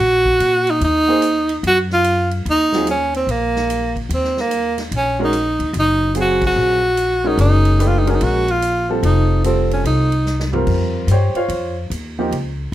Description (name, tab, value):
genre	modal jazz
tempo	146 BPM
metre	4/4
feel	swing 65% on 8ths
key	Eb dorian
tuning	A4 = 440 Hz
part	clear tenor saxophone	melody	0.0-10.5 s	Bb3 to Gb4	-16 LUFS	right 1 dB	none
part	upright bass	bass	0.0-12.7 s	F1 to Bb2	-20 LUFS	left 1 dB	none
part	swinging big-band drum kit	drums	0.3-12.4 s	crash cymbal, hi-hat, kick drum, ride cymbal, snare drum, toms	-30 LUFS	right 1 dB	none
part	warm baby grand piano	accompaniment	1.1-12.3 s	F3 to G5	-21 LUFS	right 1 dB	none
room	light reverb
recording	none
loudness	-15 LUFS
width	side -13 dB against mid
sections	0.0-10.7 A section; 10.7-12.7 B section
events	band accent 6.4; drum fill 10.3-10.7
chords	0.0 Ebmadd11; 9.0 F7; 10.7 Bbm69